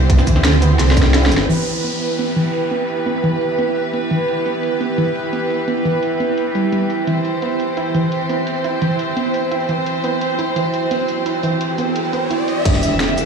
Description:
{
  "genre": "dark technical drum and bass",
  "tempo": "172 BPM",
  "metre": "4/4",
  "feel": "straight",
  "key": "E minor",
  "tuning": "A4 = 440 Hz",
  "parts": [
    { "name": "warm studio string section", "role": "sustained chords", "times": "0.0-13.3 s", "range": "E3 to E5", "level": "-22 LUFS", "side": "equal", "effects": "sidechain pumping" },
    { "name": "growl bass", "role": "bass", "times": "0.0-1.5, 12.7-13.3 s", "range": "E1 to D2", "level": "-15 LUFS", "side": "equal", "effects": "chorus, overdrive, sidechain pumping" },
    { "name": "airy breathy pad", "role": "texture", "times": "0.0-13.3 s", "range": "E4 to G5", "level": "-23 LUFS", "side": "right 3 dB", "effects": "chorus, sidechain pumping" },
    { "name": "warbly dusty pluck", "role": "arpeggios", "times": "0.1-12.3 s", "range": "E3 to E4", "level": "-22 LUFS", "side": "right 2 dB", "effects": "chorus, sidechain pumping, tape echo" },
    { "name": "drum and bass drum kit", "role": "drums", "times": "0.1-13.2 s", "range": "crash cymbal, hi-hat, shaker, snare drum", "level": "-21 LUFS", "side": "equal", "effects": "low-pass filter on hats, studio reverb, low-pass filter on snare, low-pass filter on perc, low-pass filter on cymbals" },
    { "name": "electronic kick drum", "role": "drums", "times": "0.1-1.0, 12.7 s", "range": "none", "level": "-14 LUFS", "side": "equal", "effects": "studio reverb" },
    { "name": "downlifter, riser and impact", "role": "sound effects", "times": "1.5-4.3, 11.5-13.3 s", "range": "none", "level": "-26 LUFS", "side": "equal", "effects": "none" }
  ],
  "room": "moderate lush hall reverb, RT60 1.8 s",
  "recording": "played on a big sound system in a bare room, stone room reverb, studio reverb",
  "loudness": "-16 LUFS",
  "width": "side -6 dB against mid",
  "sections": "0.0-1.5 A section; 1.5-12.7 B section",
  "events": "drop 0.0-1.5; drum fill 0.8-1.5; filter sweep on synth arpeggio sound 1.5-12.7; riser 11.5-12.7; impact 12.7-13.3",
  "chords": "0.0 C; 1.5 Em; 7.1 C; 12.7 Em"
}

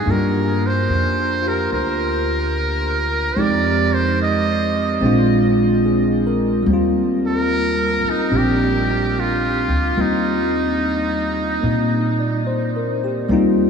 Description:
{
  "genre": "jazz ballad",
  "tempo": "73 BPM",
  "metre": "4/4",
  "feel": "swing 67% on 8ths",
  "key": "Eb major",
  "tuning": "A4 = 440 Hz",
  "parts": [
    { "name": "trumpet with metal mute", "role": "melody", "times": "0.0-12.5 s", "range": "Eb4 to Eb5", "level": "-21 LUFS", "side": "right 2 dB", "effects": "diffuse ambient delay" },
    { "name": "bell-like tine electric piano", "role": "accompaniment", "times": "0.0-13.7 s", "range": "G3 to D5", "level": "-19 LUFS", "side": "left 1 dB", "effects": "analog chorus" },
    { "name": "upright bass", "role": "bass", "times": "0.0-13.7 s", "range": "Bb1 to Bb2", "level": "-23 LUFS", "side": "right 1 dB", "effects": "none" }
  ],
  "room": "wet huge ambient reverb, RT60 7.1 s",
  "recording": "dreamy mix soaked in reverb",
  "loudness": "-16 LUFS",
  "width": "side -6 dB against mid",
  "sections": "0.0-13.3 A section",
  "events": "break 12.5-13.3",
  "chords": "0.1 Gm7; 3.4 Fm7; 5.0 Bb7; 6.7 Eb6"
}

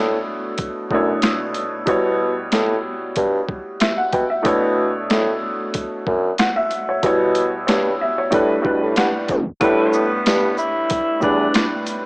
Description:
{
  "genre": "hip hop, boom-bap hip-hop",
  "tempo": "93 BPM",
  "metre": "4/4",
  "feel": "swing 54% on 16ths",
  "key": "unclear",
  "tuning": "A4 = 440 Hz",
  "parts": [
    { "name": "warm upright piano", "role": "accompaniment", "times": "0.0-12.1 s", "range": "A2 to G5", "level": "-20 LUFS", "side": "equal", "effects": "high-pass filter, low-pass filter" },
    { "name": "mellow bassoon", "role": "bass", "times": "0.0-11.5 s", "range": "E2 to B2", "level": "-19 LUFS", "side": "equal", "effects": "none" },
    { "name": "boom bap sampler-style drum kit", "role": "drums", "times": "0.6-12.0 s", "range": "hi-hat, kick drum, shaker, snare drum", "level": "-22 LUFS", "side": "equal", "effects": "overdrive" },
    { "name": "clear saxophone section", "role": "stabs", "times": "9.6-10.0 s", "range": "G3 to B4", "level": "-26 LUFS", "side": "equal", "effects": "high-pass filter, low-pass filter, analog delay" },
    { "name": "breathy tenor saxophone", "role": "melody", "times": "9.9-11.7 s", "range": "B3 to E4", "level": "-21 LUFS", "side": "equal", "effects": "high-pass filter, low-pass filter, analog delay" },
    { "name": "tambourine", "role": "percussion", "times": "10.3-11.7 s", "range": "none", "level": "-35 LUFS", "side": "left 1 dB", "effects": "none" }
  ],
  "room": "moderate plate reverb, RT60 3.1 s",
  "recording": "dreamy mix soaked in reverb, tape stop, small speaker sound",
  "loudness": "-17 LUFS",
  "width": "side -30 dB against mid",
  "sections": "0.0-9.6 A section; 9.6-12.1 B section",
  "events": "upright piano fill 8.6-9.6; tape stop 9.3-9.6",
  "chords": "0.0 Bm11; 1.9 C#m7b5; 4.5 Bm11; 7.0 C#m7b5/B; 8.3 A9sus4"
}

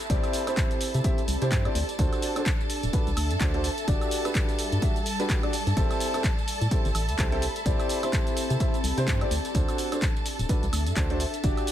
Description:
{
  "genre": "piano house",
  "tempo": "127 BPM",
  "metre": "4/4",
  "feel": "swing 58% on 16ths",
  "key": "unclear",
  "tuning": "A4 = 440 Hz",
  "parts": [
    { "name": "rich studio violin section", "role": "sustained chords", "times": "0.0-11.7 s", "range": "A4 to A5", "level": "-36 LUFS", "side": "right 1 dB", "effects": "sidechain pumping" },
    { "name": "punchy analog drum machine", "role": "drums", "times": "0.0-11.7 s", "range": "handclaps, hi-hat, tambourine, woodblock", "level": "-33 LUFS", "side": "right 1 dB", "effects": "none" },
    { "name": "downlifter", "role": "sound effects", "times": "0.0-2.0 s", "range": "none", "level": "-47 LUFS", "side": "left 2 dB", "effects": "none" },
    { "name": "ethereal airy pad", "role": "texture", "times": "0.0-11.7 s", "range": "G3 to B5", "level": "-36 LUFS", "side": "left 1 dB", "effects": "ensemble chorus, built-in reverb, sidechain pumping" },
    { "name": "clear upright piano", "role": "riff", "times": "0.1-11.7 s", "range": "C4 to E5", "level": "-31 LUFS", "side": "right 1 dB", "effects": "sidechain pumping" },
    { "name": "organ-like FM bass", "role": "bass", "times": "0.1-11.5 s", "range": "D1 to C3", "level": "-27 LUFS", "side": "equal", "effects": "sidechain pumping" },
    { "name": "electronic kick drum", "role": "drums", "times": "0.1-11.5 s", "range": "none", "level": "-27 LUFS", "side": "equal", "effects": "none" }
  ],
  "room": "digital ambience",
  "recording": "none",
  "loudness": "-24 LUFS",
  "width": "side -11 dB against mid",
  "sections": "0.0-11.7 A section",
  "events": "none",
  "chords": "0.0 C; 1.8 D7; 3.9 Gmaj7; 5.8 Am7; 7.4 C; 9.3 D7"
}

